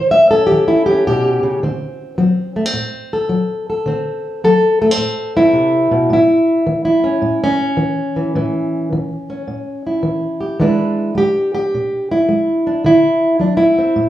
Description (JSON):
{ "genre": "acoustic country blues, solo or duo", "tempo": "107 BPM", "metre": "4/4", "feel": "swing 67% on 8ths", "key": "unclear", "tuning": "A4 = 440 Hz", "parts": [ { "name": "fingerpicked plugged-in old ladder-braced acoustic guitar", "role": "solo", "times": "0.0-14.1 s", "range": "A2 to E5", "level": "-13 LUFS", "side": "equal", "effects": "none" } ], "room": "wet large studio reverb, RT60 1.1 s", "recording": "band playing live in one room, studio reverb", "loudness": "-13 LUFS", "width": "side -13 dB against mid", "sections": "0.0-14.1 A section", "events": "none", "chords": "0.0 A7; 1.6 D7; 6.1 A; 10.6 E7; 12.8 D7" }